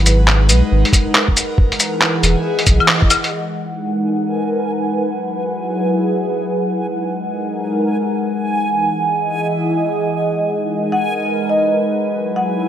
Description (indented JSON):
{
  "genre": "future garage",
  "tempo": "free time",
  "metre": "none",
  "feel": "none",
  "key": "G# minor",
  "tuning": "A4 = 440 Hz",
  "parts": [
    { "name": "airy breathy pad", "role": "sustained chords", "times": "0.0-12.7 s", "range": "E3 to F#5", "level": "-18 LUFS", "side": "equal", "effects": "chorus, vintage 12-bit sampler grit, sidechain pumping" },
    { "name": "warm sub bass", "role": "bass", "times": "0.0-2.8 s", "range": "E1 to B1", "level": "-13 LUFS", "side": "equal", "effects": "sidechain pumping" },
    { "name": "lo-fi sampler-style drum kit", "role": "drums", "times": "0.1-3.3 s", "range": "cabasa, claves, handclaps, hi-hat", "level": "-15 LUFS", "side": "left 1 dB", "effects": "none" },
    { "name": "electronic kick drum", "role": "drums", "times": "0.9-3.1 s", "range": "none", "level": "-15 LUFS", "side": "equal", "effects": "none" },
    { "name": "backwards swelling texture", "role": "texture", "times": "4.3-12.7 s", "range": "G#5", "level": "-24 LUFS", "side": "right 4 dB", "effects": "built-in reverb" },
    { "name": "marimba with soft mallets", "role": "melody", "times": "10.9-12.6 s", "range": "D#5 to F#5", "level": "-18 LUFS", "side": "equal", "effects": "digital delay" }
  ],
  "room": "moderate lush hall reverb, RT60 1.7 s",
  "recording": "none",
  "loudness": "-15 LUFS",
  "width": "side -10 dB against mid",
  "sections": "0.0-3.3 A section; 3.3-12.7 B section",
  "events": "band accent 2.9",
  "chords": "0.0 G#m9; 1.6 Emaj7; 3.3 G#m9; 5.1 F#7sus4; 6.8 G#m9; 8.5 Emaj7; 10.3 G#m9; 12.0 F#7sus4"
}